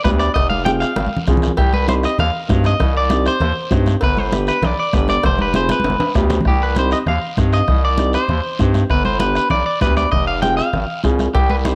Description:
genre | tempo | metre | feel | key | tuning
latin, cumbia | 196 BPM | 4/4 | straight | C harmonic minor | A4 = 440 Hz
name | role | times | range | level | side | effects
clean electric guitar | melody | 0.0-11.8 s | G4 to G5 | -22 LUFS | equal | spring reverb, slapback echo
dark upright piano | accompaniment | 0.0-11.8 s | B3 to Ab4 | -25 LUFS | equal | none
bombo | percussion | 0.0-11.8 s | none | -23 LUFS | equal | none
congas | percussion | 0.0-11.8 s | none | -26 LUFS | equal | none
guiro | percussion | 0.0-11.8 s | none | -37 LUFS | equal | none
growling FM bass | bass | 0.1-11.8 s | F1 to G2 | -22 LUFS | equal | none
timbales and cowbell | percussion | 0.1-6.4, 11.3-11.5 s | none | -29 LUFS | equal | none
room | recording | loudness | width
light reverb | dark, warm production | -17 LUFS | mono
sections
0.0-6.5 A section; 6.5-11.8 A section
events
drum fill 1.0-1.6, 5.7-6.5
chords
0.4 Fm; 1.6 Cm; 4.0 G; 5.2 Fm; 5.8 G; 6.5 Cm; 8.9 G; 10.1 Fm

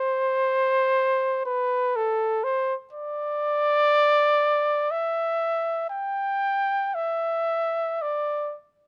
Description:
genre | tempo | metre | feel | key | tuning
classical, free, expressive piece for unaccompanied trumpet | free time | none | none | unclear | A4 = 443 Hz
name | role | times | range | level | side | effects
mellow trumpet | solo | 0.0-8.6 s | A4 to G5 | -24 LUFS | equal | none
room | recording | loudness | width
little or no reverb | close, detailed microphones | -24 LUFS | mono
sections
0.0-8.9 A section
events
none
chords
none

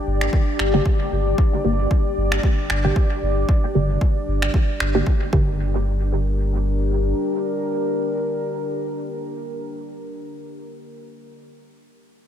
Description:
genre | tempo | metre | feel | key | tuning
dub techno | 114 BPM | 4/4 | swing 56% on 16ths | G minor | A4 = 441 Hz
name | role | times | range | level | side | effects
deep dark ambient pad | sustained chords | 0.0-10.1 s | D4 to D5 | -25 LUFS | left 1 dB | chorus, built-in reverb, sidechain pumping
warm sub bass | bass | 0.1-7.1 s | G1 | -22 LUFS | equal | sidechain pumping
electronic finger snaps | drums | 0.2-4.9 s | none | -27 LUFS | equal | dub echo
electronic kick drum | drums | 0.3-5.4 s | none | -19 LUFS | equal | none
filtered dub chord stab | stabs | 0.7-10.1 s | D3 to G4 | -26 LUFS | right 1 dB | phaser, cassette tape, sidechain pumping, dub echo
room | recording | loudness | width
moderate lush hall reverb, RT60 2.0 s | dreamy mix soaked in reverb | -19 LUFS | side -10 dB against mid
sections
0.0-5.6 A section; 5.6-9.8 B section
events
filter sweep on synth stab 0.0-5.6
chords
0.0 Gm

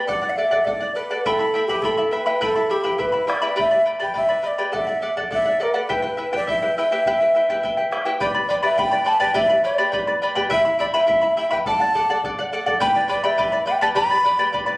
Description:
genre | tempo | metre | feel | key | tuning
andean folk, Andean ensemble | 104 BPM | 2/4 | straight | unclear | A4 = 440 Hz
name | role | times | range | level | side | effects
breathy large quena | melody | 0.0-14.5 s | G4 to B5 | -20 LUFS | equal | plate reverb
charango | accompaniment | 0.0-14.8 s | E4 to B5 | -22 LUFS | equal | none
bombo | percussion | 0.1-14.7 s | none | -34 LUFS | equal | none
room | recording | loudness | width
wet small room reverb, RT60 0.5 s | recorded on a phone in the room, club reverb | -18 LUFS | side -22 dB against mid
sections
0.0-8.2 A section; 8.2-14.8 B section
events
none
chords
0.1 D; 1.2 Em; 3.6 G; 4.7 D; 5.9 Em; 8.2 G; 10.5 Em; 11.7 D; 12.8 G

